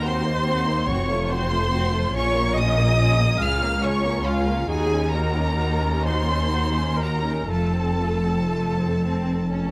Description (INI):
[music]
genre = classical, slow romantic movement for string orchestra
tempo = 39-49 BPM (dotted quarters)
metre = 6/8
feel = rubato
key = Bb minor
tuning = A4 = 441 Hz
[part]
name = clear chamber violin section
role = melody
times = 0.0-9.7 s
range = F5 to F6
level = -30 LUFS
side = equal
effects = none
[part]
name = rich chamber violin section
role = second line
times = 0.0-9.7 s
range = A3 to A4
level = -32 LUFS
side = equal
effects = none
[part]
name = rich chamber viola section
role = accompaniment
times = 0.0-9.7 s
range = F4 to F5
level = -30 LUFS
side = equal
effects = none
[part]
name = rich chamber double bass section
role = bass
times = 0.0-9.7 s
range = F1 to Eb2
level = -27 LUFS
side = equal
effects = none
[part]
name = warm chamber cello section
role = bass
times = 0.0-9.7 s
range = Db2 to Bb2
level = -28 LUFS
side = equal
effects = none
[sound]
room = light reverb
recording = close, detailed microphones, vinyl crackle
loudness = -22 LUFS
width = mono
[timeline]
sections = 0.0-9.7 A section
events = none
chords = 0.0 Cm7b5/Eb; 0.9 F; 2.1 Bbm; 3.4 Bbm/Db; 4.7 Ebm7; 7.5 F